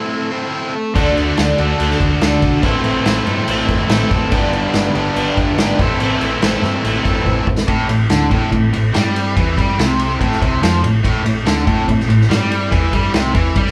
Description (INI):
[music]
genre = classic rock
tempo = 143 BPM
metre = 4/4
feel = straight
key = A dorian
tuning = A4 = 440 Hz
[part]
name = string machine, violas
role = sustained chords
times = 0.0-13.7 s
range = C4 to F#5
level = -31 LUFS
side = equal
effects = none
[part]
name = overdriven electric guitar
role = riff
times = 0.0-13.7 s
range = G2 to C5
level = -22 LUFS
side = equal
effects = none
[part]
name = fingerpicked twelve-string acoustic guitar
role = accompaniment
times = 0.9-7.7 s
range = A2 to B4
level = -27 LUFS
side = equal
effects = none
[part]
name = cranked stack guitar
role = riff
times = 0.9-13.7 s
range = G2 to F#4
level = -22 LUFS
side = equal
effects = overdrive
[part]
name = hollow-body short-scale fingered electric bass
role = bass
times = 1.0-13.7 s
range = G1 to G2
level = -24 LUFS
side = equal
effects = none
[part]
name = vintage drum kit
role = drums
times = 1.0-13.7 s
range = crash cymbal, kick drum, ride cymbal, snare drum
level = -20 LUFS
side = equal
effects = none
[sound]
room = wet large studio reverb, RT60 0.9 s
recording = band playing live in one room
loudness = -16 LUFS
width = mono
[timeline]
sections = 0.0-7.7 A section; 7.7-13.7 B section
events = drum fill 7.3-7.7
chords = 0.0 Am; 1.0 D; 2.6 Amadd9; 4.3 G6; 5.8 Amadd9; 7.7 Am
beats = 0.11 0.53 | 0.95 1.37 1.79 2.21 | 2.63 3.05 3.47 3.90 | 4.32 4.74 5.16 5.58 | 6.00 6.42 6.84 7.26 | 7.68 8.10 8.52 8.94 | 9.36 9.78 10.20 10.62 | 11.04 11.46 11.88 12.30 | 12.72 13.14 13.56